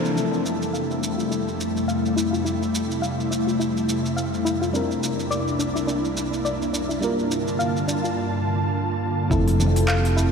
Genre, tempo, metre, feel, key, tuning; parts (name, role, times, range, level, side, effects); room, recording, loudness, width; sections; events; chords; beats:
sunset chillout; 105 BPM; 4/4; swing 57% on 16ths; F major; A4 = 441 Hz
mellow FM electric piano; accompaniment; 0.0-10.3 s; E3 to C5; -28 LUFS; moving between left 5 dB and right 2 dB; chorus, auto-pan, low-pass filter, analog delay
ethereal airy pad; sustained chords; 0.0-10.3 s; C2 to A5; -24 LUFS; equal; ensemble chorus, built-in reverb
smooth R&B drum kit; drums; 0.1-10.3 s; handclaps, hi-hat, shaker; -32 LUFS; right 2 dB; overdrive
soft round pluck; arpeggios; 0.2-10.3 s; D4 to F5; -29 LUFS; left 2 dB; chorus, analog delay
fretless electric bass; bass; 9.3-10.3 s; F1; -20 LUFS; right 1 dB
electronic kick drum; drums; 9.3-9.4 s; -24 LUFS; right 1 dB; overdrive
congas; percussion; 9.6-9.7 s; -36 LUFS; right 2 dB
wet lush hall reverb, RT60 2.9 s; dreamy mix soaked in reverb; -21 LUFS; side -6 dB against mid
0.2-9.3 A section; 9.3-10.3 B section
break 0.0; filter sweep on FM electric piano 0.2-9.3; filter sweep on synth arpeggio sound 0.2-9.3
0.2 Fmaj7; 4.7 C9; 7.0 Gm7; 9.3 Fmaj7
| 0.17 0.74 1.31 1.88 | 2.45 3.02 3.59 4.17 | 4.74 5.31 5.88 6.45 | 7.02 7.59 8.17 8.74 | 9.31 9.88